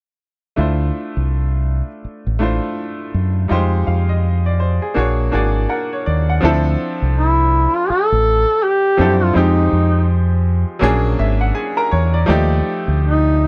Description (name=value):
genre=R&B, neo-soul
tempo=82 BPM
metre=4/4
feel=swing 61% on 16ths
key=unclear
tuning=A4 = 440 Hz
part: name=bright baby grand piano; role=accompaniment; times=0.6-13.5 s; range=F3 to Bb5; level=-23 LUFS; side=equal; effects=none
part: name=deep dub fingered electric bass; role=bass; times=0.6-13.5 s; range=Ab1 to F#2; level=-18 LUFS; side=equal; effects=none
part: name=warm duduk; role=melody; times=7.2-13.5 s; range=Eb4 to A4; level=-18 LUFS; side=equal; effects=none
room=little or no reverb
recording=dry, close 1970s-style studio recording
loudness=-17 LUFS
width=mono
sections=0.6-6.4 A section; 6.4-13.5 B section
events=grand piano fill 5.0-6.4, 10.8-12.3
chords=0.6 Dm9; 3.5 Fm9; 5.0 Bb7alt; 6.4 Dm9; 9.3 Fm9; 10.8 Bb7alt; 12.3 Ebmaj9#11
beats=| 0.57 1.30 2.03 2.76 | 3.50 4.23 4.96 5.69 | 6.42 7.15 7.88 8.62 | 9.35 10.08 10.81 11.54 | 12.28 13.01